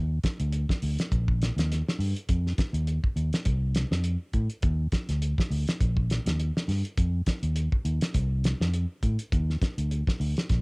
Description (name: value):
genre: afrobeat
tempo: 102 BPM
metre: 4/4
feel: swing 55% on 16ths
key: unclear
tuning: A4 = 440 Hz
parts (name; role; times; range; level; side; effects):
- fingered electric bass; bass; 0.0-10.6 s; Bb1 to A2; -26 LUFS; equal; none
- cloth-damped thuddy drum kit; drums; 0.2-10.6 s; hi-hat, kick drum, snare drum; -27 LUFS; equal; cassette tape
room: little or no reverb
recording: home recording on cassette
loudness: -25 LUFS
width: side -39 dB against mid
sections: 0.0-10.6 A section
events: none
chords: none